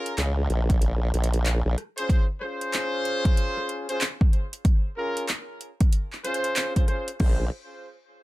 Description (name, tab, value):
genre	glitch hop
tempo	94 BPM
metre	4/4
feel	swing 62% on 16ths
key	Bb minor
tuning	A4 = 441 Hz
part	bright horn section	stabs	0.0-7.5 s	Db4 to C5	-29 LUFS	equal	sidechain pumping, low-pass filter, tape echo
part	pop drum kit	drums	0.1-7.4 s	crash cymbal, handclaps, hi-hat, rim click	-30 LUFS	equal	overdrive
part	formant-sweep wobble bass	bass	0.2-1.8, 7.2-7.5 s	Bb1 to Db2	-23 LUFS	equal	chorus, overdrive
part	electronic kick drum	drums	0.7-7.4 s	none	-21 LUFS	equal	overdrive
room	little or no reverb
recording	none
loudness	-22 LUFS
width	side -18 dB against mid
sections	0.0-7.2 A section; 7.2-8.2 B section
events	none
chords	0.0 Bbm7